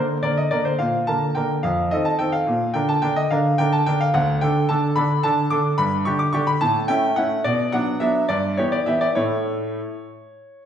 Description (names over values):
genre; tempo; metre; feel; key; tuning
classical-period piano sonatina; 72 BPM (dotted quarters); 6/8; straight; D major from 4.1 s; A4 = 440 Hz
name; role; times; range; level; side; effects
bright baby grand piano; solo; 0.0-10.6 s; D2 to D6; -19 LUFS; equal; none
room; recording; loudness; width
wet recital hall reverb, RT60 1.2 s; heard from further back in the room; -18 LUFS; side -9 dB against mid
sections
0.0-10.7 A section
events
none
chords
0.0 Gm (rootless); 0.8 Bb; 1.6 F7; 2.5 Bb; 4.1 D5; 5.8 G5; 6.6 A; 7.4 Bm; 8.3 Em/G; 9.2 A